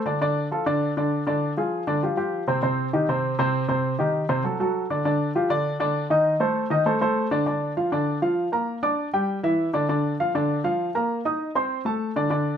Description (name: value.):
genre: latin.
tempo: 198 BPM.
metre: 4/4.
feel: straight.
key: unclear.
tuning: A4 = 440 Hz.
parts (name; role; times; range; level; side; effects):
dark baby grand piano; solo; 0.1-12.6 s; C3 to Eb6; -22 LUFS; equal; none.
room: moderate studio reverb, RT60 0.8 s.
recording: none.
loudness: -22 LUFS.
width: side -8 dB against mid.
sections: 0.0-7.5 A section; 7.5-12.6 B section.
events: none.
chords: 0.2 Dm; 1.4 Ddim; 2.0 Csus4; 2.6 Cm; 4.4 D; 5.0 N.C.; 6.3 Cm69; 7.5 Bb; 8.7 Gm; 9.3 Dsus24; 9.9 Dm; 11.1 Cm7; 11.7 Amadd11.